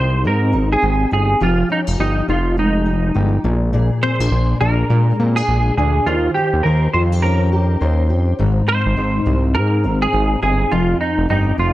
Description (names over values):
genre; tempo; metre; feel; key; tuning
indie pop, bedroom pop; 103 BPM; 4/4; swing 60% on 16ths; Ab major; A4 = 440 Hz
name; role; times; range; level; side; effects
semi-hollow electric guitar; melody; 0.0-11.7 s; Eb4 to C5; -20 LUFS; right 2 dB; ensemble chorus, slapback echo
fingerpicked steel-string acoustic guitar; accompaniment; 0.0-11.7 s; F2 to C5; -20 LUFS; left 2 dB; ensemble chorus, vibrato effect
fat analog bass; bass; 0.0-11.7 s; F1 to Bb2; -17 LUFS; equal; none
room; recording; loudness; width
light reverb, studio reverb; dark, warm production; -14 LUFS; side -15 dB against mid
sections
0.0-11.7 A section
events
none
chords
0.0 Abmaj7; 1.4 Fm9; 3.4 Bb7; 6.1 Eb13; 8.4 Abmaj7; 10.7 F7sus2